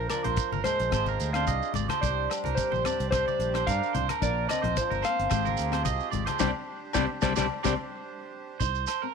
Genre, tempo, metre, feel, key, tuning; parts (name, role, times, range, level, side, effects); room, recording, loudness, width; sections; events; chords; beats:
highlife guitar band; 109 BPM; 4/4; swing 54% on 16ths; A4 = 439 Hz
mellow electric guitar; melody; 0.0-7.7 s; G4 to F5; -30 LUFS; left 3 dB; phaser
warm trombone; second line; 0.0-7.7 s; F3 to D4; -37 LUFS; right 14 dB
accordion; sustained chords; 0.0-8.6 s; D4 to C5; -42 LUFS; right 4 dB
electric guitar at the edge of break-up; arpeggios; 0.0-9.1 s; G4 to Eb5; -32 LUFS; right 16 dB; tape echo
fingered electric bass; bass; 0.0-8.8 s; G1 to G2; -32 LUFS; equal
damped 70s drum kit; drums; 0.1-9.0 s; hi-hat, kick drum, rim click, snare drum; -33 LUFS; left 4 dB
agogo bells; percussion; 0.1-9.0 s; -38 LUFS; left 15 dB
congas; percussion; 0.1-7.8 s; -38 LUFS; left 8 dB
shekere; percussion; 0.1-9.0 s; -37 LUFS; right 9 dB
fingerpicked steel-string acoustic guitar; accompaniment; 0.2-9.1 s; G3 to Eb4; -36 LUFS; left 13 dB
light reverb, small room reverb; 1960s-style stereo with parts hard left and right; -25 LUFS; side -6 dB against mid
0.0-8.6 A section
band accent 6.4-8.6
0.0 Bbadd9; 0.9 Fmadd9/Ab; 2.0 Csus2; 4.2 Bbadd9; 5.3 Fmadd9/Ab; 6.4 Csus2; 8.6 Cm
0.38 0.93 1.48 | 2.03 2.58 3.12 3.67 | 4.22 4.77 5.31 5.86 | 6.41 6.96 7.51 8.06 | 8.61